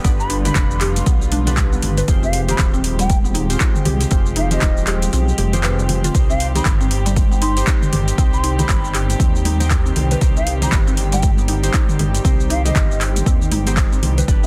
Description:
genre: afro house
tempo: 118 BPM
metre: 4/4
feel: swing 60% on 16ths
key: C harmonic minor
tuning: A4 = 441 Hz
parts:
  - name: dark studio string section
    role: sustained chords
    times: 0.0-14.5 s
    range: D3 to G4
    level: -32 LUFS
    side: equal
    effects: sidechain pumping
  - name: mallet-like synth pluck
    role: arpeggios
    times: 0.0-14.5 s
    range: G3 to B4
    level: -30 LUFS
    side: equal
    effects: lush chorus, sidechain pumping, dub echo
  - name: warm analog keys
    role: stabs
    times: 0.0-14.5 s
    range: Ab3 to C5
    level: -30 LUFS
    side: equal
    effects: chorus, sidechain pumping, dub echo
  - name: dark detuned saw bass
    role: bass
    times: 0.0-14.5 s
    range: Eb1 to Eb2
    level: -22 LUFS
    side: equal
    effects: tube saturation, sidechain pumping
  - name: afro-pop drum kit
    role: drums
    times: 0.0-14.5 s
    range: handclaps, hi-hat, shaker, toms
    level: -26 LUFS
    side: equal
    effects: overdrive
  - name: electronic kick drum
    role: drums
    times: 0.0-14.4 s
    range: none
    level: -19 LUFS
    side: equal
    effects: none
  - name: mellow hollow jazz flute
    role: melody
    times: 0.2-14.5 s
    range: Eb5 to C6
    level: -30 LUFS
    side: equal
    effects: dub echo
  - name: congas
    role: percussion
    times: 0.5-14.2 s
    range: none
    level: -29 LUFS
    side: equal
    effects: none
room: digital ambience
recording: dense, heavily limited modern master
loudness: -17 LUFS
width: mono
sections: 0.0-14.5 A section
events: kick drops out 5.1-6.1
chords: 0.0 G; 2.1 Fmadd9; 6.1 Cm

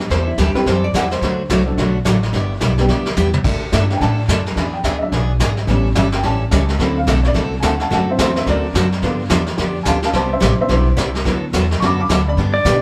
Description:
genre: country, western swing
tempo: 215 BPM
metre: 4/4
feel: swing 61% on 8ths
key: unclear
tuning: A4 = 441 Hz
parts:
  - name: upright bass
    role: bass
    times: 0.0-12.8 s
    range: G1 to B2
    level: -21 LUFS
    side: equal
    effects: none
  - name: vintage brush drum kit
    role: drums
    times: 0.0-12.8 s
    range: brushed snare drum, crash cymbal, hi-hat, kick drum, snare drum, toms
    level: -24 LUFS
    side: equal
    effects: none
  - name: vintage hollow-body jazz guitar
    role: second line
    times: 0.1-1.7 s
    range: E4 to F#5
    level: -25 LUFS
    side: equal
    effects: none
  - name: picked steel-string acoustic guitar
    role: accompaniment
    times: 0.1-12.8 s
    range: C3 to A4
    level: -23 LUFS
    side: equal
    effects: none
  - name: warm upright piano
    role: accompaniment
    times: 0.5-12.8 s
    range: E3 to D6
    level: -24 LUFS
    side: equal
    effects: none
  - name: pedal steel guitar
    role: melody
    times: 12.5-12.8 s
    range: D5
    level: -18 LUFS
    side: equal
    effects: none
room: moderate large studio reverb, RT60 0.9 s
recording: band playing live in one room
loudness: -17 LUFS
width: mono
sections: 0.0-3.4 A section; 3.4-12.4 A section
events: hollow-body jazz guitar solo 0.0-3.4; drum fill 3.2; upright piano solo 3.4-12.4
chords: 0.1 Am7; 1.2 D; 2.3 G6; 3.4 Dsus2; 4.6 E7; 5.7 A7; 6.8 D7; 9.0 G7; 10.1 Cmaj7; 11.2 D6

